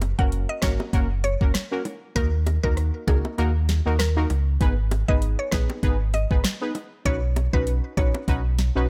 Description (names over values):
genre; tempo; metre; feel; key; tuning
dancehall; 98 BPM; 4/4; swing 56% on 16ths; G# minor; A4 = 439 Hz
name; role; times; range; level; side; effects
sub bass with octave; bass; 0.0-8.9 s; F#1 to D#2; -26 LUFS; equal; none
afro-pop drum kit; drums; 0.0-8.7 s; hi-hat, kick drum, rim click, snare drum; -26 LUFS; equal; none
bongos; percussion; 0.0-8.7 s; none; -36 LUFS; equal; none
mallet-like synth pluck; melody; 0.2-8.2 s; G#4 to F#5; -33 LUFS; equal; chorus, tape echo
synth brass stab; accompaniment; 0.2-8.9 s; A#3 to B4; -32 LUFS; equal; chorus, sidechain pumping
room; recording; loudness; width
digital ambience; none; -23 LUFS; mono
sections
0.0-8.9 A section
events
kick muted 3.4-4.6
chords
0.0 F#; 2.2 D#m; 4.6 G#m; 7.1 Badd9